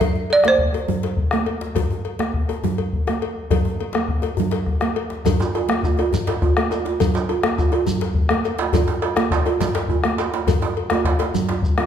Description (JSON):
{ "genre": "west african traditional, West African drum ensemble", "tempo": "138 BPM (dotted quarters)", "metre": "12/8", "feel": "straight", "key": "C major pentatonic", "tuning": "A4 = 440 Hz", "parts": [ { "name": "balafon", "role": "melody", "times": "0.0-1.0 s", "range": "C5 to E5", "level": "-18 LUFS", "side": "right 2 dB", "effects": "none" }, { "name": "bombo", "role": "percussion", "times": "0.0-11.9 s", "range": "none", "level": "-22 LUFS", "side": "left 2 dB", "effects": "none" }, { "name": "congas", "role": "percussion", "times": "0.0-11.9 s", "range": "none", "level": "-26 LUFS", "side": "right 6 dB", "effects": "none" }, { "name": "cowbell", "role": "percussion", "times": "0.0-11.9 s", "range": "none", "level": "-27 LUFS", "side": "left 7 dB", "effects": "none" }, { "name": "djembe", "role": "percussion", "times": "0.0-11.9 s", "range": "none", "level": "-28 LUFS", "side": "left 4 dB", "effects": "none" }, { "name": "shekere", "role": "percussion", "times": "5.3-11.7 s", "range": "none", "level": "-34 LUFS", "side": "right 1 dB", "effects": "none" }, { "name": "djembe", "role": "percussion", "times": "5.4-11.9 s", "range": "none", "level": "-23 LUFS", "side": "right 6 dB", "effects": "none" } ], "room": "wet recital hall reverb, RT60 1.5 s", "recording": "recorded in a church or concert hall", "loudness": "-18 LUFS", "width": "side -9 dB against mid", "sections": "0.0-5.2 A section; 5.2-11.9 B section", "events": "none", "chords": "none", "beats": "| 0.01 0.45 0.89 1.32 | 1.76 2.20 2.63 3.07 | 3.51 3.94 4.38 4.81 | 5.25 5.69 6.12 6.56 | 6.99 7.43 7.86 8.30 | 8.73 9.17 9.60 10.04 | 10.47 10.91 11.34 11.78" }